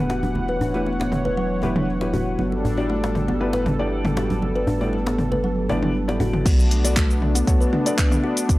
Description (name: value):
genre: afro house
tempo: 118 BPM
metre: 4/4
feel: straight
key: B minor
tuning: A4 = 440 Hz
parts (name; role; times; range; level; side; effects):
- warm analog pad; sustained chords; 0.0-8.6 s; E3 to F#5; -28 LUFS; equal; chorus, sidechain pumping
- kalimba; arpeggios; 0.0-8.4 s; F#3 to B4; -25 LUFS; equal; sidechain pumping, tape echo
- felt-muted upright piano; stabs; 0.0-8.6 s; B3 to D5; -28 LUFS; left 2 dB; sidechain pumping, tape echo
- warm sub bass; bass; 0.0-8.6 s; E1 to D2; -26 LUFS; equal; sidechain pumping
- congas; percussion; 0.1-6.3 s; none; -30 LUFS; right 2 dB; none
- djembe; percussion; 0.1-6.3 s; none; -29 LUFS; left 1 dB; none
- deep house drum kit; drums; 1.1-8.6 s; cabasa, crash cymbal, handclaps, hi-hat, toms; -26 LUFS; equal; overdrive
- electronic kick drum; drums; 6.5-8.6 s; none; -18 LUFS; equal; none
room: light reverb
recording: dry, gritty hardware recording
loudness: -19 LUFS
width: side -18 dB against mid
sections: 0.0-6.5 A section; 6.5-8.6 B section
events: drop 6.5-8.6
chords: 0.0 Em; 2.4 G6; 6.5 Bm7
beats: | 0.36 0.86 1.37 1.88 | 2.39 2.90 3.41 3.92 | 4.42 4.93 5.44 5.95 | 6.46 6.97 7.47 7.98 | 8.49